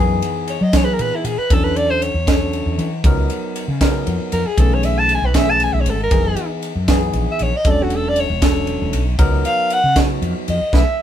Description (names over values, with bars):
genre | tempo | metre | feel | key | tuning
electric jazz fusion | 78 BPM (dotted quarters) | 6/8 | straight | unclear | A4 = 439 Hz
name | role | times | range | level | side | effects
barky tine electric piano | accompaniment | 0.0-10.8 s | E3 to A#4 | -23 LUFS | left 2 dB | none
woody fretless electric bass | bass | 0.0-10.8 s | E1 to F#3 | -20 LUFS | equal | none
crisp fusion drum kit | drums | 0.2-10.9 s | kick drum, ride cymbal, snare drum | -19 LUFS | equal | none
warm soprano saxophone | melody | 0.5-11.0 s | E4 to A5 | -19 LUFS | equal | none
room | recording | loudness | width
light reverb | band playing live in one room | -15 LUFS | side -10 dB against mid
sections
0.0-11.0 A section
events
soprano saxophone solo 0.0-11.0; band accent 10.7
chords
0.0 F#13sus4; 1.5 E13sus4; 3.0 C#13sus4; 4.6 B13sus4; 6.1 F#13sus4; 7.7 E13sus4; 9.2 C#13sus4